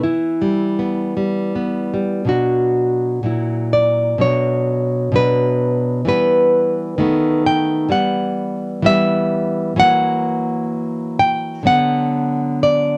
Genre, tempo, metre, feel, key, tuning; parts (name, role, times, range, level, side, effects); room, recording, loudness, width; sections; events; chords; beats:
romantic piece for solo classical guitar; 51-66 BPM; 2/4; rubato; B minor; A4 = 440 Hz
nylon-string guitar; solo; 0.0-13.0 s; A#2 to G5; -18 LUFS; equal
moderate studio ambience, RT60 0.5 s; -18 LUFS; mono
0.0-2.3 A section; 2.3-13.0 B section
0.1 Em; 2.3 Bm; 3.3 F#7/A#; 4.2 Bm; 6.1 Em; 7.0 B7/D#; 7.9 Em; 9.8 F#7/E; 11.7 Bm/D
| 0.05 1.18 | 2.30 3.28 | 4.22 5.17 | 6.10 7.02 | 7.93 8.87 | 9.80 10.73 | 11.68 12.63